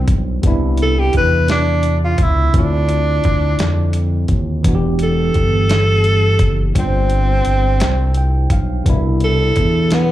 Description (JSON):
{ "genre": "slow six-eight R&B", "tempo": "57 BPM (dotted quarters)", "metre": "6/8", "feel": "straight", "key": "C major", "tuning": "A4 = 440 Hz", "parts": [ { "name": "breathy tenor saxophone", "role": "melody", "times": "0.0-10.1 s", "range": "B3 to B4", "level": "-18 LUFS", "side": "right 1 dB", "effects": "slapback echo" }, { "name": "tine electric piano", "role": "accompaniment", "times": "0.0-10.1 s", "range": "B2 to G5", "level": "-22 LUFS", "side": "equal", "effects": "medium stereo tremolo, slapback echo" }, { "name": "smooth gliding synth bass", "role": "bass", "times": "0.0-10.1 s", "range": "E1 to F2", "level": "-16 LUFS", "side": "equal", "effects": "none" }, { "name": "dusty soul sampler-style drum kit", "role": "drums", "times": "0.1-10.1 s", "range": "hi-hat, kick drum, snare drum", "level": "-17 LUFS", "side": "equal", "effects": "none" } ], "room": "little or no reverb", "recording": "live gig heard through the venue's PA, club reverb", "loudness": "-13 LUFS", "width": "side -14 dB against mid", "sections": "0.0-10.1 A section", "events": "tine electric piano fill 7.8-8.9", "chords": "0.4 Cmaj9; 2.5 Dm9; 4.6 Em7; 6.8 G7sus4; 8.9 Cmaj9" }